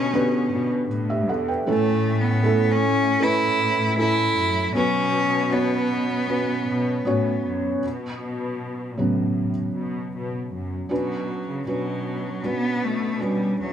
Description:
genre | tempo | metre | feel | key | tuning
pop ballad | 78 BPM | 4/4 | straight | B minor | A4 = 440 Hz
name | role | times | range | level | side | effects
rich cello | melody | 0.0-13.7 s | F#3 to E4 | -23 LUFS | left 1 dB | none
felt-muted upright piano | accompaniment | 0.0-13.7 s | A2 to G5 | -25 LUFS | right 2 dB | none
muted symphonic cello section | bass | 0.0-13.7 s | E2 to C#3 | -27 LUFS | left 1 dB | none
room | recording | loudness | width
moderate large studio reverb, RT60 1.0 s | band playing live in one room | -21 LUFS | side -9 dB against mid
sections
0.0-7.8 A section; 7.8-10.9 B section; 10.9-13.7 C section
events
felt piano solo 7.8-10.9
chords
0.0 G/B; 1.7 A; 4.8 Bsus2; 10.9 Bmadd9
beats
0.14 0.91 | 1.68 2.44 3.21 3.98 | 4.75 5.52 6.29 7.06 | 7.83 8.60 9.37 10.14 | 10.91 11.68 12.44 13.21

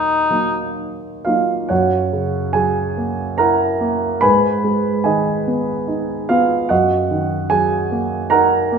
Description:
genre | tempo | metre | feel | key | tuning
classical, romantic duo for cor anglais and grand piano | 62-75 BPM | 3/4 | rubato | unclear | A4 = 440 Hz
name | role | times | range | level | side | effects
mellow cor anglais | melody | 0.0-0.7 s | Eb4 | -17 LUFS | left 4 dB | none
warm concert grand piano | accompaniment | 0.0-8.8 s | Eb2 to Cb6 | -16 LUFS | right 2 dB | none
room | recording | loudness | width
moderate recital hall reverb, RT60 1.5 s | minimal, uncompressed stereo recording | -15 LUFS | side -6 dB against mid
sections
0.0-1.7 A section; 1.7-8.8 B section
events
none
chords
0.0 Ebm; 1.7 Gb7; 4.2 Abm; 6.7 Ebm/Gb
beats
0.78 | 1.71 2.55 3.40 | 4.23 5.05 5.88 | 6.71 7.51 8.32

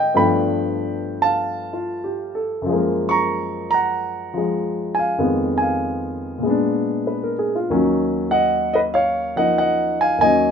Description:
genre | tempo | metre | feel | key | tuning
solo jazz | 96 BPM | 4/4 | swing 67% on 8ths | Eb minor | A4 = 440 Hz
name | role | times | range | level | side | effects
dark concert grand piano | solo | 0.0-10.5 s | Eb2 to Db6 | -18 LUFS | equal | none
room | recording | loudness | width
light reverb | minimal, uncompressed stereo recording | -18 LUFS | side -7 dB against mid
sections
0.0-10.5 A section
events
none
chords
0.2 G9; 2.7 Gbmaj9; 5.2 Fm7b5; 6.4 Bb7b9; 7.7 Ebm7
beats
| 0.15 0.78 1.41 2.03 | 2.66 3.29 3.92 4.54 | 5.17 5.80 6.43 7.06 | 7.68 8.31 8.94 9.57 | 10.20

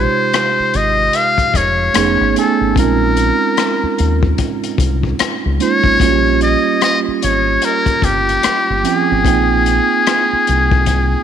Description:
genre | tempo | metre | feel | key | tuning
R&B, neo-soul | 74 BPM | 4/4 | swing 61% on 16ths | Bb dorian | A4 = 436 Hz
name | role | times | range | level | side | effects
trumpet with metal mute | melody | 0.0-11.2 s | G4 to F5 | -15 LUFS | left 2 dB | none
mellow tine electric piano | accompaniment | 0.0-11.2 s | C3 to G#5 | -18 LUFS | right 10 dB | medium stereo tremolo
deep dub fingered electric bass | bass | 0.0-11.1 s | F1 to Eb2 | -18 LUFS | left 1 dB | tube saturation
crunchy breakbeat drum kit | drums | 0.3-11.1 s | hi-hat, kick drum, rim click | -20 LUFS | left 5 dB | none
room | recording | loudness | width
moderate echo chamber reverb, RT60 2.0 s | 1960s-style stereo | -12 LUFS | side -8 dB against mid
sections
0.0-11.2 A section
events
none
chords
0.0 Fm9; 1.9 F7alt; 2.8 Bbm9; 6.0 Gm7b5; 9.2 Abmaj7/Bb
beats
0.33 1.14 1.95 | 2.76 3.57 4.38 5.19 | 6.00 6.82 7.63 8.44 | 9.25 10.06 10.87

